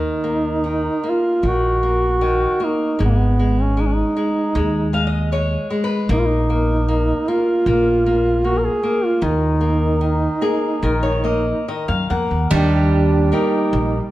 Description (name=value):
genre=fado-style ballad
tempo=69-79 BPM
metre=4/4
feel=rubato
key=Eb minor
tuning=A4 = 440 Hz
part: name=dark duduk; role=melody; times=0.0-14.1 s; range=Bb3 to Bb4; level=-19 LUFS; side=right 2 dB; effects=none
part: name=flamenco guitar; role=accompaniment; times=0.0-14.0 s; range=Eb3 to Gb5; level=-22 LUFS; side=left 2 dB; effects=none
part: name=upright bass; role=bass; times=0.0-14.0 s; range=Ab1 to Gb2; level=-20 LUFS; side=equal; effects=none
part: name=picked twelve-string acoustic guitar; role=second line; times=12.5-14.1 s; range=G3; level=-20 LUFS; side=right 4 dB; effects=none
room=moderate recital hall reverb, RT60 1.5 s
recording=none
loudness=-16 LUFS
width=side -16 dB against mid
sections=0.0-12.5 A section; 12.5-14.1 B section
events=nylon-string guitar fill 4.5-6.1, 10.0-12.5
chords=0.0 Ebm; 3.0 Ab5; 6.1 Eb5/Bb; 9.2 Ebm; 12.5 Eb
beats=0.65 1.44 2.22 | 3.00 3.78 4.55 5.31 | 6.09 6.87 7.65 8.43 | 9.22 10.01 10.82 11.66 | 12.51 13.32